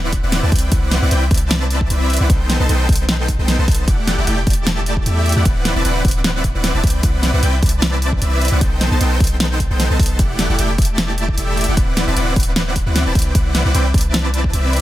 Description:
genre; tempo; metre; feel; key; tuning
future bass; 152 BPM; 4/4; swing 53% on 16ths, half-time; E minor; A4 = 440 Hz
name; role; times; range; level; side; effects
dense compressed supersaw; riff; 0.0-14.8 s; A3 to A5; -20 LUFS; equal; sidechain pumping, digital delay
long sustained 808-style bass; bass; 0.0-14.8 s; D1 to E2; -18 LUFS; equal; sidechain pumping
electronic kick drum; drums; 0.1-14.5 s; none; -17 LUFS; equal; none
pop drum kit; drums; 0.1-14.8 s; hi-hat, snare drum; -21 LUFS; equal; none
room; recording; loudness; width
little or no reverb; none; -14 LUFS; side -14 dB against mid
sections
0.0-14.8 A section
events
none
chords
0.0 D13; 0.5 Cmaj9#11; 2.3 B7b9b13; 3.9 Em11; 5.5 D13; 6.8 Cmaj9#11; 8.6 B7b9b13; 10.2 Em11; 11.8 D13; 13.2 Cmaj9#11

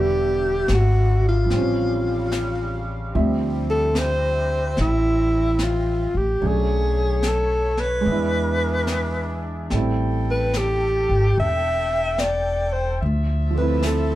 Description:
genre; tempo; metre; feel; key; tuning
jazz ballad; 73 BPM; 4/4; swing 66% on 8ths; unclear; A4 = 440 Hz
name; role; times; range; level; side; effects
breathy alto saxophone; melody; 0.0-14.2 s; E4 to E5; -22 LUFS; equal; none
warm grand piano; accompaniment; 0.0-14.2 s; D3 to E5; -28 LUFS; right 4 dB; none
mellow saxophone section; sustained chords; 0.0-14.2 s; C#3 to G5; -33 LUFS; left 2 dB; none
upright bass; bass; 0.0-14.2 s; E1 to E2; -22 LUFS; equal; none
jazz brush drum kit; drums; 0.7-14.2 s; brushed snare drum, hi-hat, snare drum; -31 LUFS; left 1 dB; none
room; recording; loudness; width
wet club ambience, RT60 0.5 s; heard from further back in the room; -19 LUFS; side -15 dB against mid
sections
0.0-14.2 A section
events
none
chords
0.0 Em7; 1.5 A7alt; 3.1 Dm11; 6.4 Bm9; 8.0 E7; 9.7 Am7; 13.0 Dm9

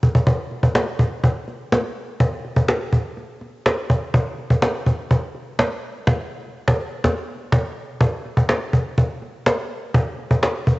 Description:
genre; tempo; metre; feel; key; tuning
pop; 124 BPM; 4/4; straight; none; none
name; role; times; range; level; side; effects
cajon; drums; 0.0-10.8 s; none; -18 LUFS; equal; cassette tape
room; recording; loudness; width
light reverb; home recording on cassette, nothing above 7.9 kHz; -19 LUFS; side -21 dB against mid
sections
0.0-8.0 A section; 8.0-10.8 B section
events
drum fill 0.0; band accent 6.1-8.0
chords
none

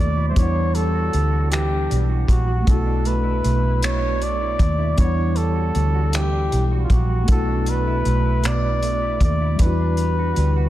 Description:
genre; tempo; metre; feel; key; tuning
slow six-eight R&B; 52 BPM (dotted quarters); 6/8; straight; unclear; A4 = 438 Hz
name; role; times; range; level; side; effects
warm flugelhorn; melody; 0.0-10.7 s; E#4 to D5; -25 LUFS; left 1 dB; none
semi-hollow electric guitar; second line; 0.0-10.7 s; B2 to F#4; -29 LUFS; right 5 dB; ensemble chorus
mellow tine electric piano; accompaniment; 0.0-10.7 s; F#3 to F#5; -28 LUFS; left 1 dB; medium stereo tremolo
vintage muted fingered electric bass; bass; 0.0-10.7 s; A#1 to E2; -20 LUFS; equal; none
cloth-damped thuddy drum kit; drums; 0.4-10.5 s; finger snaps, hi-hat, kick drum; -21 LUFS; equal; none
room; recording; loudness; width
light reverb; none; -17 LUFS; side -14 dB against mid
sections
0.0-10.7 A section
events
none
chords
0.4 Em9; 2.7 Bm7; 5.0 Em9; 7.3 Bm7; 9.6 Em9

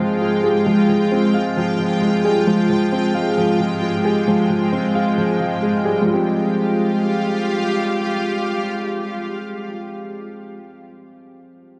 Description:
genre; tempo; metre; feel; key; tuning
hip hop; 133 BPM; 4/4; half-time; F minor; A4 = 440 Hz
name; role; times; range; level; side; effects
dark grand piano; accompaniment; 0.0-11.8 s; F3 to G4; -25 LUFS; equal; cassette tape
granular cloud pad; sustained chords; 0.0-10.4 s; Ab3 to G5; -25 LUFS; equal; built-in reverb, cassette tape
soft electric-piano-like synth keys; arpeggios; 0.0-10.7 s; Ab3 to F5; -22 LUFS; equal; chorus, cassette tape, analog delay
room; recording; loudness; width
light reverb, digital ambience; home recording on cassette; -19 LUFS; mono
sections
0.0-6.1 A section; 6.1-9.7 B section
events
none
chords
0.0 Fmadd9

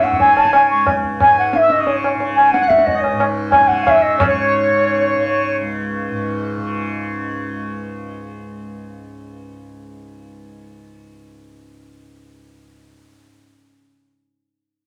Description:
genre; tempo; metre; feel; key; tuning
indian classical, Hindustani; 181 BPM; 4/4; straight; C# raga darbari; A4 = 440 Hz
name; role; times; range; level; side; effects
mellow hollow bansuri; melody; 0.0-5.5 s; C#5 to C#6; -16 LUFS; equal; none
hand-pumped harmonium; second line; 0.0-5.6 s; C#5 to G#5; -23 LUFS; equal; none
tanpura; drone; 0.0-13.7 s; C#2 to C#3; -27 LUFS; equal; none
tabla; percussion; 0.0-4.3 s; none; -22 LUFS; equal; none
room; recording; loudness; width
wet small room reverb, RT60 0.5 s; none; -16 LUFS; mono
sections
0.0-4.2 A section; 4.2-6.8 B section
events
none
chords
none

